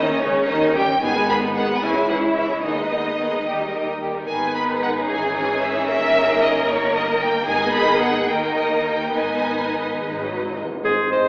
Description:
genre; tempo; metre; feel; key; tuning
quick classical-period movement for symphony orchestra; 70-76 BPM (dotted quarters); 6/8; rubato; G# minor; A4 = 440 Hz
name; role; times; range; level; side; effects
rich chamber violin section; melody; 0.0-11.2 s; C#5 to B5; -26 LUFS; equal; none
rich studio violin section; second line; 0.0-11.2 s; A#3 to D#5; -28 LUFS; equal; none
rich studio viola section; accompaniment; 0.0-11.2 s; C#3 to E4; -27 LUFS; equal; none
rich chamber double bass section; bass; 0.0-11.2 s; G1 to G2; -36 LUFS; equal; none
warm chamber cello section; bass; 0.0-11.2 s; Ab2 to B4; -27 LUFS; equal; none
timpani; percussion; 0.0-3.4, 7.5-10.8 s; G#2 to D#3; -40 LUFS; equal; none
bright clarinet; second line; 10.8-11.3 s; Ab4 to C5; -20 LUFS; equal; none
warm oboe; second line; 10.8-11.3 s; C5; -28 LUFS; equal; none
dark bassoon; accompaniment; 10.8-11.3 s; Ab3; -33 LUFS; equal; none
warm French horn section; sustained chords; 10.8-11.3 s; C4 to Eb4; -33 LUFS; equal; none
room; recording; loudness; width
wet recital hall reverb, RT60 1.4 s; recorded in a church or concert hall, vinyl crackle, AM radio sound; -21 LUFS; mono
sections
0.0-10.8 A section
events
timpani fill 9.1-10.8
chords
0.0 D#7; 1.0 G#m; 1.8 C#m; 2.6 G#m/D#; 3.5 D#; 4.3 G#m; 5.1 C#madd9/G#; 5.9 D#7/G; 7.5 G#m; 8.3 D#5; 9.1 G#m

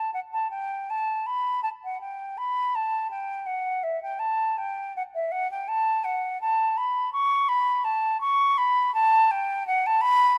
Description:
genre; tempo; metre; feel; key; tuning
classical, baroque-style fantasia for unaccompanied flute; 82 BPM; 4/4; rubato; unclear; A4 = 441 Hz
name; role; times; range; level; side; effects
mellow concert flute; solo; 0.0-10.4 s; E5 to C#6; -25 LUFS; equal; none
room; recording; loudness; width
light reverb; close, detailed microphones; -25 LUFS; mono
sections
0.0-10.4 A section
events
none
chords
none

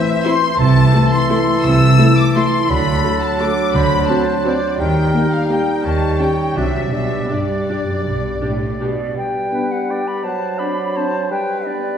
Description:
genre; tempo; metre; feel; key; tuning
classical, orchestral ballroom waltz; 151-183 BPM; 3/4; rubato; G major; A4 = 441 Hz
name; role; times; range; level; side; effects
dark symphonic violin section; melody; 0.0-8.8 s; D5 to E6; -25 LUFS; left 4 dB; none
clear clarinet; second line; 0.0-12.0 s; D4 to C5; -26 LUFS; left 1 dB; none
clear symphonic violin section; second line; 0.0-8.8 s; D5 to E6; -26 LUFS; left 4 dB; none
warm oboe; second line; 0.0-12.0 s; A4 to F#5; -27 LUFS; equal; none
dark bassoon; accompaniment; 0.0-12.0 s; E3 to G3; -21 LUFS; right 2 dB; none
dark French horn section; sustained chords; 0.2-11.8 s; A3 to G4; -27 LUFS; left 3 dB; none
silver concert flute; second line; 0.3-12.0 s; D5 to E6; -24 LUFS; left 2 dB; none
rich symphonic viola section; accompaniment; 0.3-8.9 s; A3 to G4; -25 LUFS; right 1 dB; none
rich symphonic cello section; bass; 0.6-9.2 s; F#2 to Eb3; -22 LUFS; right 1 dB; none
warm symphonic double bass section; bass; 0.6-8.4 s; B1 to Eb2; -19 LUFS; right 1 dB; none
timpani; percussion; 3.7-4.2 s; D3; -24 LUFS; left 1 dB; none
room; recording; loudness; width
wet scoring stage reverb, RT60 2.0 s; heard from further back in the room; -14 LUFS; side -8 dB against mid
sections
0.0-9.2 A section; 9.2-12.0 A section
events
none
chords
0.0 Am (rootless); 0.6 Am/C; 2.7 D; 3.7 D7; 4.8 Eb; 5.8 Eb7; 6.6 D7/C; 6.9 G/B; 9.2 G; 10.2 D7/F#; 11.3 G

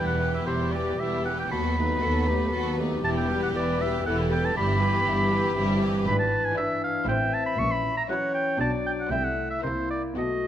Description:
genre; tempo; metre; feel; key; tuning
quick classical-period movement for symphony orchestra; 118 BPM; 3/4; rubato; E minor; A4 = 440 Hz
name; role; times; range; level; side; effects
warm studio violin section; melody; 0.0-10.5 s; G4 to D5; -37 LUFS; equal; none
clear clarinet; second line; 0.0-10.5 s; E4 to E5; -31 LUFS; left 2 dB; none
clear oboe; second line; 0.0-10.5 s; C5 to C#6; -28 LUFS; right 1 dB; none
rich chamber violin section; second line; 0.0-10.5 s; D4 to G4; -36 LUFS; left 3 dB; none
rich chamber viola section; accompaniment; 0.0-10.5 s; E3 to B3; -35 LUFS; right 2 dB; none
mellow French horn section; sustained chords; 0.0-10.5 s; E3 to F#4; -33 LUFS; left 4 dB; none
dark chamber cello section; bass; 0.0-10.5 s; D#2 to C3; -30 LUFS; right 1 dB; none
rich chamber double bass section; bass; 0.0-10.5 s; E1 to D#2; -32 LUFS; right 2 dB; none
room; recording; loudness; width
moderate scoring stage reverb, RT60 1.7 s; none; -23 LUFS; side -10 dB against mid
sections
0.0-10.5 A section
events
none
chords
0.0 Em; 1.5 B7/D#; 3.0 Em; 4.6 Em/G; 6.1 E7/G#; 7.1 Am; 7.6 F#7/A#; 8.6 Bm; 9.1 Am/C; 9.6 C7

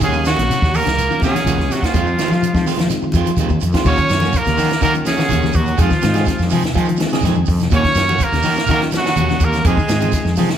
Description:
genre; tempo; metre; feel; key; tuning
afrobeat; 124 BPM; 4/4; straight; Eb dorian; A4 = 440 Hz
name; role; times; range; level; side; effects
clear trumpet; melody; 0.0-10.3 s; F4 to Db5; -20 LUFS; right 1 dB; none
raspy tenor saxophone; second line; 0.0-10.4 s; F3 to Db4; -25 LUFS; right 2 dB; none
mellow electric guitar; arpeggios; 0.0-10.6 s; C3 to F3; -25 LUFS; left 4 dB; phaser
electric guitar at the edge of break-up; stabs; 0.0-10.5 s; Eb3 to Ab4; -24 LUFS; right 5 dB; spring reverb
fretless electric bass; bass; 0.0-10.5 s; Bb1 to F3; -20 LUFS; equal; none
compact cocktail drum kit; drums; 0.0-10.6 s; crash cymbal, hi-hat, kick drum, snare drum; -21 LUFS; equal; none
congas; percussion; 0.0-10.5 s; none; -25 LUFS; left 1 dB; none
shekere; percussion; 0.0-10.6 s; none; -28 LUFS; right 6 dB; none
mellow reed electric piano; accompaniment; 0.1-10.4 s; Gb3 to F5; -26 LUFS; left 2 dB; none
room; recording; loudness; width
moderate large studio reverb, RT60 1.2 s; band playing live in one room; -14 LUFS; side -9 dB against mid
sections
0.0-3.9 A section; 3.9-10.6 B section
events
none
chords
0.0 Ebm7; 1.9 Fm7; 3.9 Ebm7; 5.8 Fm7; 7.7 Ebm7; 9.7 Fm7

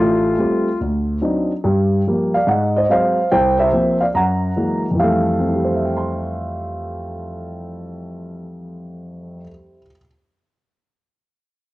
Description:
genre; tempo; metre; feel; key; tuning
solo jazz; 144 BPM; 4/4; swing 65% on 8ths; F major; A4 = 440 Hz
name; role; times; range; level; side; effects
dark concert grand piano; solo; 0.0-10.1 s; A1 to C6; -17 LUFS; equal; cassette tape
room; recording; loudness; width
moderate spring reverb, RT60 1.3 s, small room ambience; home recording on cassette; -16 LUFS; side -17 dB against mid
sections
0.0-1.6 A section; 1.6-5.0 B section; 5.0-8.3 C section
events
none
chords
0.0 Fadd9/A; 0.8 D7b9; 1.6 Gm7; 2.5 Ab7; 3.3 C7sus4; 4.1 Gb9; 5.0 Fmaj9

